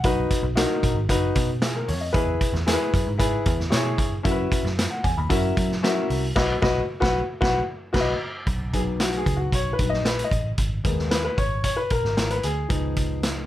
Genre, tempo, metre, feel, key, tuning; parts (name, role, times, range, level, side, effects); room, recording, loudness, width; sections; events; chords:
uptempo 1960s-style soul; 114 BPM; 4/4; straight; B major; A4 = 439 Hz
warm upright piano; accompaniment; 0.0-13.5 s; D#3 to B5; -25 LUFS; left 2 dB
vintage muted picked electric bass; bass; 0.0-13.5 s; F#1 to F#3; -27 LUFS; equal
vintage drum kit; drums; 0.0-13.4 s; crash cymbal, hi-hat, kick drum, snare drum; -25 LUFS; equal
light reverb; -21 LUFS; side -13 dB against mid
0.0-8.5 A section; 8.5-13.5 B section
band accent 6.4-8.5; upright piano solo 8.5-13.5
0.0 B; 2.2 E; 4.3 F#7sus4; 5.3 F#7; 6.4 B; 10.6 G#madd9; 12.7 C#7